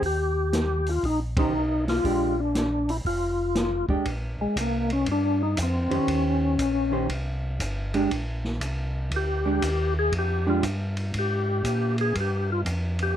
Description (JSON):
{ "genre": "soul jazz organ trio", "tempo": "119 BPM", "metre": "4/4", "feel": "swing 66% on 8ths", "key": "unclear", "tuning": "A4 = 437 Hz", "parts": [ { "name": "percussive tonewheel organ", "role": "melody", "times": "0.0-13.2 s", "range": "Ab3 to Ab4", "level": "-25 LUFS", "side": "left 2 dB", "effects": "slow rotary speaker, overdrive, chorus vibrato" }, { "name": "mellow tonewheel organ", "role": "bass", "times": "0.0-13.1 s", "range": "F1 to Bb2", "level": "-28 LUFS", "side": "equal", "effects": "slow rotary speaker" }, { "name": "open jazz drum kit", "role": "drums", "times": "0.0-13.1 s", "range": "hi-hat, kick drum, ride cymbal, snare drum", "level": "-32 LUFS", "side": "equal", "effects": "none" }, { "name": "vintage hollow-body jazz guitar", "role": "accompaniment", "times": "1.4-10.6 s", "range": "Eb3 to C5", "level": "-26 LUFS", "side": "right 4 dB", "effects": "none" } ], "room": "light reverb", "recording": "dark, warm production", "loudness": "-23 LUFS", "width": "side -10 dB against mid", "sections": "0.0-4.1 A section; 4.1-13.2 B section", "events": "band accent 1.3; tonewheel organ solo 4.1-13.2", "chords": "0.0 Eb; 2.0 Bb6; 3.1 Fsus2; 4.1 Bbsus2; 6.1 Eb6; 8.1 Bb13; 12.2 Ebadd9 (rootless)", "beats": "| 0.02 0.53 1.03 1.54 | 2.04 2.55 3.06 3.56 | 4.07 4.57 5.08 5.58 | 6.09 6.59 7.10 7.60 | 8.11 8.61 9.12 9.62 | 10.13 10.64 11.14 11.65 | 12.15 12.66 13.16" }